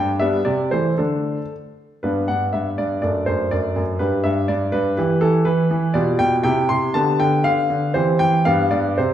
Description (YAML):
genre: classical-period piano sonatina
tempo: 120 BPM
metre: 2/4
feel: rubato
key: G major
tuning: A4 = 440 Hz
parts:
  - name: clear baby grand piano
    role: solo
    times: 0.0-9.1 s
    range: F#2 to C6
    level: -17 LUFS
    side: equal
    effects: none
room: wet recital hall reverb, RT60 1.4 s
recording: recorded in a church or concert hall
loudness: -17 LUFS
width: side -10 dB against mid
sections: 0.0-2.0 A section; 2.0-9.1 B section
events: none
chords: 0.5 Am/C; 1.0 D5; 2.0 G; 3.0 D/F#; 4.0 G5; 5.0 Em; 6.0 G7/B; 6.5 C; 7.0 G7/D; 8.0 C/E; 8.5 G7